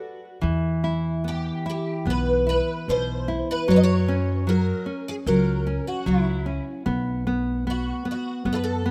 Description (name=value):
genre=fado-style ballad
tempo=75 BPM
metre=4/4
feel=rubato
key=unclear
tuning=A4 = 440 Hz
part: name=nylon-string guitar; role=accompaniment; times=0.0-8.9 s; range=B2 to D5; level=-27 LUFS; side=equal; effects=none
part: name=upright bass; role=bass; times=0.4-8.9 s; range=B1 to F#2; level=-30 LUFS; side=equal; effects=none
part: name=picked twelve-string acoustic guitar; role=melody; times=1.3-8.9 s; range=E4 to D#5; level=-29 LUFS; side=equal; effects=ensemble chorus
room=light reverb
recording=rough home demo mix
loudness=-24 LUFS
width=mono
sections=0.4-8.9 A section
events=none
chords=0.4 E5; 3.7 F#5; 6.9 B5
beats=| 0.42 1.24 2.06 2.88 | 3.69 4.48 5.26 6.06 | 6.86 7.66 8.46